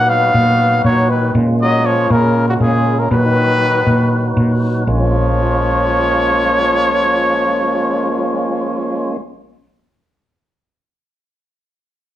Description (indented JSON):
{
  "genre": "progressive instrumental, progressive",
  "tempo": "free time",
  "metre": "none",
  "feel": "none",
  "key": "Bb phrygian",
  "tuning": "A4 = 441 Hz",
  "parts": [
    { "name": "breathy trumpet", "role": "melody", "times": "0.0-9.2 s", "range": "Gb4 to F#5", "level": "-16 LUFS", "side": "equal", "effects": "none" },
    { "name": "trombone with straight mute", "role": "second line", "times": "0.0-9.2 s", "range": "Bb2 to B3", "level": "-21 LUFS", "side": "left 4 dB", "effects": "none" },
    { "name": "tonewheel organ", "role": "accompaniment", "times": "0.0-9.2 s", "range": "F#3 to B4", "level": "-20 LUFS", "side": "right 1 dB", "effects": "slow rotary speaker" },
    { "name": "woody fretless electric bass", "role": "bass", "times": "0.0-9.7 s", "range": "Bb1 to Bb2", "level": "-16 LUFS", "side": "equal", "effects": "none" }
  ],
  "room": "moderate large studio reverb, RT60 0.8 s",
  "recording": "band playing live in one room",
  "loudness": "-12 LUFS",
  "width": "side -12 dB against mid",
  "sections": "0.0-4.9 A section; 4.9-8.4 B section",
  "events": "none",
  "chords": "0.0 B/Bb; 1.3 Bbm7; 3.1 B/Bb; 4.9 Bbm7"
}